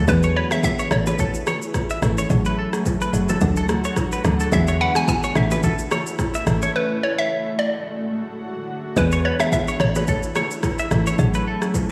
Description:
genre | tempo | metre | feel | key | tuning
afrobeats | 108 BPM | 4/4 | swing 55% on 16ths | A major | A4 = 440 Hz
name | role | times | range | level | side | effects
granular cloud pad | sustained chords | 0.0-11.9 s | A3 to F#4 | -32 LUFS | equal | built-in reverb, lush chorus
direct-recorded clean electric guitar | riff | 0.0-11.6 s | A4 to E5 | -30 LUFS | equal | analog chorus, analog delay
woody log drum bass | bass | 0.0-11.6 s | F#1 to E2 | -24 LUFS | equal | none
hollow square pluck | melody | 0.1-10.3 s | B4 to G#5 | -26 LUFS | equal | chorus, analog delay
buzzing marimba with medium mallets | accompaniment | 0.1-11.8 s | E3 to A4 | -27 LUFS | equal | none
afro-pop drum kit | drums | 0.1-11.9 s | kick drum, rim click, shaker | -28 LUFS | equal | none
congas and bongos | percussion | 0.1-11.9 s | none | -31 LUFS | equal | none
room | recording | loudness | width
wet plate reverb, RT60 1.5 s | dreamy mix soaked in reverb, studio ambience | -21 LUFS | mono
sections
0.1-11.9 A section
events
break 6.7-9.0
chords
0.1 E; 0.9 A; 2.3 F#madd9/A; 3.4 D; 4.5 E; 5.4 A; 6.7 F#madd9; 7.9 D; 9.0 E; 9.8 A; 11.2 F#madd9/A

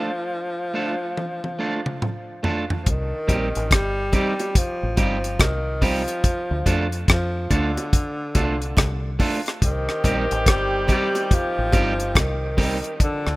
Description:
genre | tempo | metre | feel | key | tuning
roots reggae | 71 BPM | 4/4 | swing 62% on 16ths | C dorian | A4 = 441 Hz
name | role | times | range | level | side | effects
breathy tenor saxophone | melody | 0.0-13.4 s | D3 to G3 | -26 LUFS | equal | dub echo
electric guitar at the edge of break-up | accompaniment | 0.0-12.8 s | G3 to A4 | -27 LUFS | right 2 dB | spring reverb, dub echo
deep reggae drum kit | drums | 1.2-13.4 s | hi-hat, kick drum, rim click, toms | -20 LUFS | equal | none
deep dub fingered electric bass | bass | 2.9-13.4 s | G1 to F2 | -26 LUFS | equal | none
bongos | percussion | 3.3-12.8 s | none | -33 LUFS | right 2 dB | none
bright horn section | second line | 9.6-13.4 s | Eb3 to A4 | -27 LUFS | left 1 dB | dub echo
room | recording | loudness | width
studio ambience | rough home demo mix | -20 LUFS | side -20 dB against mid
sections
0.0-2.9 A section; 2.9-13.4 B section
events
break 0.0-2.9; drum fill 1.2-2.9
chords
0.0 Dm; 2.9 Cm; 6.2 Dm; 9.6 Cm

